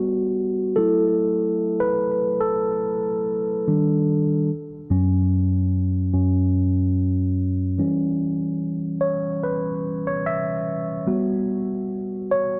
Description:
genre	soul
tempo	73 BPM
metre	4/4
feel	swing 54% on 16ths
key	unclear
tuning	A4 = 440 Hz
part	mellow tine electric piano	solo	0.0-12.6 s	F#2 to E5	-22 LUFS	equal	phaser, tape echo
room	moderate plate reverb, RT60 3.3 s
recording	dark, warm production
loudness	-23 LUFS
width	mono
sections	0.0-12.6 A section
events	tine electric piano solo 0.0-12.6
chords	0.0 Gmaj7; 0.8 F#m7; 3.7 D#maj7; 4.5 F#5; 7.8 Em6; 11.1 Gmaj7

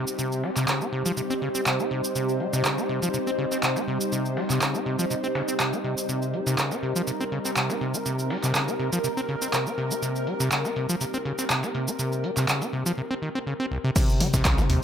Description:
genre	acid house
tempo	122 BPM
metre	4/4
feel	swing 54% on 16ths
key	C minor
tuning	A4 = 440 Hz
part	lush unison pad	sustained chords	0.0-14.8 s	G3 to C5	-31 LUFS	right 1 dB	chorus, phaser, sidechain pumping
part	acid bass, saw	riff	0.0-14.8 s	C2 to C4	-28 LUFS	equal	overdrive
part	granular cloud pad	texture	0.0-13.0 s	C4 to C5	-33 LUFS	equal	built-in reverb, sidechain pumping
part	punchy analog drum machine	drums	0.1-14.8 s	crash cymbal, handclaps, hi-hat, ride cymbal, shaker, toms	-28 LUFS	right 1 dB	none
part	breakbeat sampler-style drum kit	drums	0.2-14.8 s	hi-hat, snare drum	-40 LUFS	left 1 dB	sidechain pumping on hats, high-pass filter on hats, low-pass filter on hats, high-pass filter on snare, low-pass filter on snare, high-pass filter on room, low-pass filter on room
part	electronic kick drum	drums	14.0-14.6 s	none	-22 LUFS	equal	overdrive
part	saturated sub bass	bass	14.3-14.8 s	C2 to Eb2	-26 LUFS	equal	sidechain pumping
room	moderate spring reverb, RT60 1.7 s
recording	none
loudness	-23 LUFS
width	side -8 dB against mid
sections	0.0-14.0 A section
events	break 13.0-14.0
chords	0.0 Cm

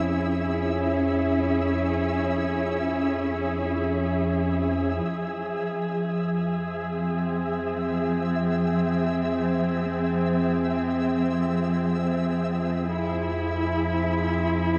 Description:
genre	dark ambient drone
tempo	free time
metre	none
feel	none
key	F harmonic minor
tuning	A4 = 438 Hz
part	dark studio cello section	sustained chords	0.0-14.8 s	F3 to Ab4	-27 LUFS	equal	none
part	dark detuned synth bell	arpeggios	0.0-5.1 s	none	barely audible	none	none
part	analog drone	drone	0.0-14.8 s	F2 to F3	-32 LUFS	equal	chorus
part	flickering grainy texture	texture	0.0-14.8 s	E5	-37 LUFS	equal	built-in reverb
room	wet huge ambient reverb, RT60 7.7 s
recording	dreamy mix soaked in reverb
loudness	-26 LUFS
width	mono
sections	0.0-5.1 A section; 5.1-14.8 A section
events	fade-in on synth drone 5.1-14.8; fade-out on synth texture 5.1-14.8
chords	0.0 Dbm; 5.1 Fm; 12.9 Dbm (rootless)

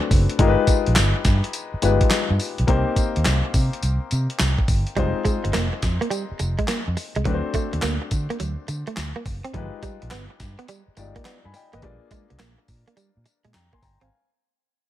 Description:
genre	R&B, new jack swing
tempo	105 BPM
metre	4/4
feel	swing 66% on 16ths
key	unclear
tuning	A4 = 441 Hz
part	warm grand piano	accompaniment	0.0-14.3 s	Ab3 to C6	-26 LUFS	left 6 dB	none
part	vintage muted fingered electric bass	bass	0.1-14.1 s	F1 to D3	-23 LUFS	equal	none
part	gated 80s digital drum machine	drums	0.1-14.1 s	handclaps, hi-hat, kick drum, snare drum, tambourine	-23 LUFS	equal	gated reverb, gated reverb snare
part	direct-recorded clean electric guitar	riff	5.0-14.1 s	F3 to C4	-29 LUFS	right 4 dB	analog chorus
room	digital ambience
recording	none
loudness	-19 LUFS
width	side -13 dB against mid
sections	0.0-14.1 A section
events	fade-out 0.0-14.1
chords	0.4 G7b9b13; 2.7 Cm7; 5.0 Fm7; 7.3 D7; 9.5 G7b9b13; 11.8 Bb7

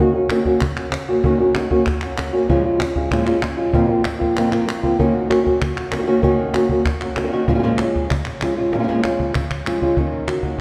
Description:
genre	flamenco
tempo	192 BPM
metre	4/4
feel	straight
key	unclear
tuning	A4 = 436 Hz
part	flamenco guitar	melody	0.0-10.6 s	F2 to Gb4	-21 LUFS	equal	none
part	flamenco guitar	stabs	0.0-10.6 s	F2 to Gb4	-28 LUFS	equal	none
part	cajon	percussion	0.3-10.6 s	none	-26 LUFS	equal	none
part	palmas hand claps	percussion	0.3-10.4 s	none	-32 LUFS	equal	none
room	wet church reverb, RT60 3.5 s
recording	recorded in a church or concert hall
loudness	-19 LUFS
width	mono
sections	0.0-10.0 A section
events	drum fill 4.4-5.0, 8.7-10.0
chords	0.0 Ebm7; 2.5 Bbm7; 3.7 Fsus4; 5.0 Ebm7; 7.5 Bbm7; 10.0 Ebm7

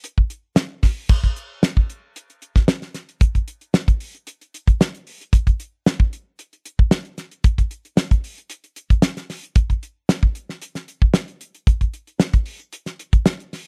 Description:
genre	jazz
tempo	114 BPM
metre	4/4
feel	straight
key	none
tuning	none
part	damped 70s drum kit	drums	0.0-13.7 s	crash cymbal, hi-hat, kick drum, snare drum	-19 LUFS	equal	none
room	little or no reverb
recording	dry, close 1970s-style studio recording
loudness	-21 LUFS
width	mono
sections	0.0-1.1 A section; 1.1-13.7 B section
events	none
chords	none

